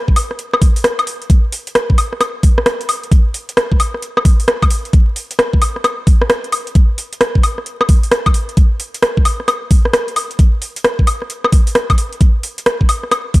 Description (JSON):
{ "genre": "UK garage", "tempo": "132 BPM", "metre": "4/4", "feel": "swing 64% on 16ths", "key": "none", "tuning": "none", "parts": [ { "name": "electronic kick drum", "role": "drums", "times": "0.1-13.4 s", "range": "none", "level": "-10 LUFS", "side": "equal", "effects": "overdrive" }, { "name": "garage drum kit", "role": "drums", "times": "0.2-13.4 s", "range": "hi-hat, rim click, woodblock", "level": "-16 LUFS", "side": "equal", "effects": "overdrive" } ], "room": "little or no reverb", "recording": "dry, gritty hardware recording, transformer saturation, vinyl crackle", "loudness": "-12 LUFS", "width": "side -20 dB against mid", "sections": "0.0-13.4 A section", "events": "break 0.8-1.3", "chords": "none", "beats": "0.39 0.84 | 1.30 1.75 2.21 2.66 | 3.12 3.57 4.03 4.48 | 4.93 5.39 5.84 6.30 | 6.75 7.21 7.66 8.12 | 8.57 9.03 9.48 9.93 | 10.39 10.84 11.30 11.75 | 12.21 12.66 13.12" }